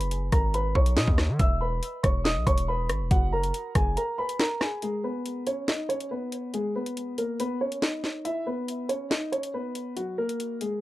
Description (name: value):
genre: hip hop, drill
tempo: 140 BPM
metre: 4/4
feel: half-time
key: G# minor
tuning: A4 = 439 Hz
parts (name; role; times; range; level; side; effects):
- dark concert grand piano; melody; 0.0-10.8 s; F#3 to E6; -29 LUFS; equal; low-pass filter, plate reverb, tape echo
- distorted 808-style bass; bass; 0.0-4.0 s; E1 to D#3; -27 LUFS; equal; distortion
- drill drum kit; drums; 0.0-10.7 s; hi-hat, kick drum, rim click, snare drum; -25 LUFS; equal; none
room: light reverb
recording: none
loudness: -25 LUFS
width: side -16 dB against mid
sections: 0.0-4.8 A section; 4.8-10.8 B section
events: break 4.0-4.8, 4.8-10.8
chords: 0.0 G#m; 1.4 E5; 3.1 F#add9; 4.8 G#m; 8.3 E5; 10.0 F#add9